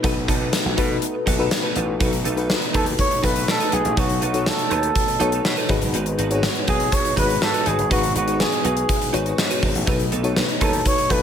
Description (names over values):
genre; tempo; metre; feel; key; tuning
1980s-style pop; 122 BPM; 4/4; straight; B mixolydian; A4 = 440 Hz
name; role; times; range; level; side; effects
FM electric piano with tremolo; accompaniment; 0.0-11.2 s; G#2 to C#5; -25 LUFS; left 5 dB; none
warm analog pad; sustained chords; 0.0-11.2 s; G#3 to F#4; -31 LUFS; right 2 dB; chorus
direct-recorded clean electric guitar; riff; 0.0-11.2 s; D#4 to B4; -29 LUFS; right 7 dB; ensemble chorus, ping-pong delay
gritty slap bass; bass; 0.0-11.2 s; F#1 to B2; -26 LUFS; equal; overdrive
gated 80s drum kit; drums; 0.0-11.2 s; hi-hat, kick drum, snare drum; -22 LUFS; equal; gated reverb
mellow flugelhorn; melody; 2.8-11.2 s; F#4 to C#5; -24 LUFS; right 1 dB; ping-pong delay
room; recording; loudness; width
light reverb, studio reverb; none; -18 LUFS; side -8 dB against mid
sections
0.0-2.0 A section; 2.0-11.2 B section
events
none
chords
0.0 B7; 5.7 G#m7; 9.9 B7